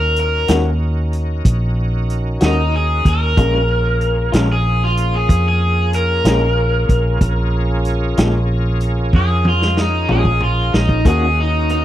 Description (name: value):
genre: slow blues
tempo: 62 BPM (dotted quarters)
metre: 12/8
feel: straight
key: Bb minor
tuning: A4 = 440 Hz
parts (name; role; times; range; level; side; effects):
- raw garage guitar; melody; 0.0-11.8 s; Eb4 to Bb4; -19 LUFS; left 1 dB; overdrive, spring reverb
- bright tonewheel organ; sustained chords; 0.0-11.8 s; Bb3 to Bb4; -26 LUFS; right 1 dB; overdrive, chorus vibrato, slow rotary speaker
- vintage muted fingered electric bass; bass; 0.0-11.8 s; Bb1 to F2; -17 LUFS; equal; none
- vintage drum kit; drums; 0.2-11.8 s; hi-hat, kick drum, snare drum, toms; -16 LUFS; equal; none
- electric guitar through a small old amp; accompaniment; 0.5-11.3 s; Bb2 to Gb4; -20 LUFS; left 3 dB; tremolo
room: small room ambience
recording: dry, close 1970s-style studio recording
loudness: -14 LUFS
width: side -12 dB against mid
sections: 0.0-11.8 A section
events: overdriven electric guitar solo 0.0-11.8; drum fill 9.1-11.1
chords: 0.0 Ebm7; 3.4 Bbm7; 11.1 Ebm7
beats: 0.49 1.46 2.42 | 3.38 4.34 5.30 6.26 | 7.22 8.18 9.14 10.10 | 11.06